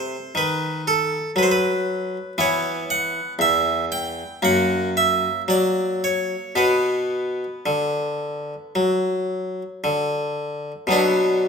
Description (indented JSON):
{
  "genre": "classical, baroque-style suite movement for harpsichord",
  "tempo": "54-60 BPM",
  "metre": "4/4",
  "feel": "rubato",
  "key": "B minor",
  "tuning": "A4 = 440 Hz",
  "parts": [
    { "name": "harpsichord", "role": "solo", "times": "0.0-11.5 s", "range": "E2 to G5", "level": "-20 LUFS", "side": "equal", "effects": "none" }
  ],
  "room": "wet recital hall reverb, RT60 1.6 s",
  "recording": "minimal, uncompressed stereo recording",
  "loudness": "-20 LUFS",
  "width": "side -5 dB against mid",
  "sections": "0.0-10.9 A section",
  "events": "none",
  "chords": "0.0 Am69/C; 2.4 Em69; 4.4 F#; 6.6 Bm",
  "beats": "0.36 1.36 | 2.37 3.38 4.42 5.47 | 6.55 7.66 8.75 9.83 | 10.93"
}